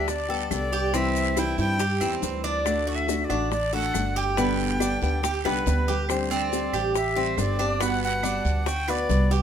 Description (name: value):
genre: latin, Cuban son and guajira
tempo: 140 BPM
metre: 4/4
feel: straight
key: G major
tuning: A4 = 440 Hz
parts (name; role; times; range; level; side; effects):
- breathy bright jazz flute; melody; 0.0-9.3 s; B4 to G5; -29 LUFS; left 1 dB; none
- nylon-string guitar; accompaniment; 0.0-9.4 s; B2 to G4; -29 LUFS; left 4 dB; none
- Cuban tres; arpeggios; 0.0-9.4 s; B3 to B4; -28 LUFS; right 4 dB; none
- upright bass; bass; 0.0-9.4 s; G1 to G2; -28 LUFS; right 1 dB; none
- bongos; percussion; 0.1-9.4 s; none; -34 LUFS; left 7 dB; none
- guiro; percussion; 0.1-9.4 s; none; -39 LUFS; right 9 dB; none
- maracas; percussion; 0.1-9.4 s; none; -38 LUFS; left 7 dB; none
- claves; percussion; 0.5-9.1 s; none; -39 LUFS; right 6 dB; none
room: light reverb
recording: minimal, uncompressed stereo recording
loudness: -22 LUFS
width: side -8 dB against mid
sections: 0.0-6.1 A section; 6.1-9.4 B section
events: drum fill 5.4-6.1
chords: 0.0 Gadd9; 0.9 C; 2.7 D; 4.4 G; 6.1 D7sus4; 7.8 Gmaj7